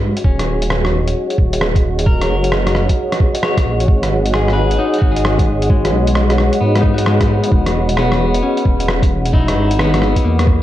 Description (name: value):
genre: future garage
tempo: 132 BPM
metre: 4/4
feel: swing 64% on 16ths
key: G# minor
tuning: A4 = 436 Hz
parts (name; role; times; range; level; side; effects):
- dark analog pad; sustained chords; 0.0-10.6 s; F#4 to F#5; -20 LUFS; right 1 dB; chorus, sidechain pumping
- dark detuned saw bass; bass; 0.0-10.6 s; D#1 to G#2; -17 LUFS; equal; sidechain pumping
- electric guitar at the edge of break-up; accompaniment; 0.2-10.6 s; G#3 to C#5; -21 LUFS; left 4 dB; sidechain pumping, tape echo
- electronic kick drum; drums; 0.2-10.6 s; none; -15 LUFS; equal; none
- lo-fi sampler-style drum kit; drums; 0.2-10.5 s; hi-hat, rim click; -20 LUFS; equal; none
room: light reverb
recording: none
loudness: -12 LUFS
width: side -13 dB against mid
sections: 0.0-10.6 A section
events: none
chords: 0.2 D#m7; 3.9 G#m7; 7.5 Emaj7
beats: | 0.24 0.70 1.15 1.61 | 2.06 2.52 2.97 3.43 | 3.88 4.33 4.79 5.24 | 5.70 6.15 6.61 7.06 | 7.52 7.97 8.43 8.88 | 9.34 9.79 10.24